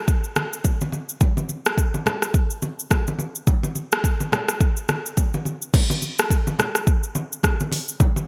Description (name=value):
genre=afrobeats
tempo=106 BPM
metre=4/4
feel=swing 58% on 16ths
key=none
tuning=none
part: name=afro-pop drum kit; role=drums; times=0.1-8.3 s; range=crash cymbal, hi-hat, kick drum, rim click, shaker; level=-22 LUFS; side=equal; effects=gated reverb
part: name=congas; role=percussion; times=0.4-8.3 s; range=none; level=-30 LUFS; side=equal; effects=none
room=light reverb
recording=bright 1980s-style digital production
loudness=-23 LUFS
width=mono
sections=0.0-5.7 A section; 5.7-8.3 B section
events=none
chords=none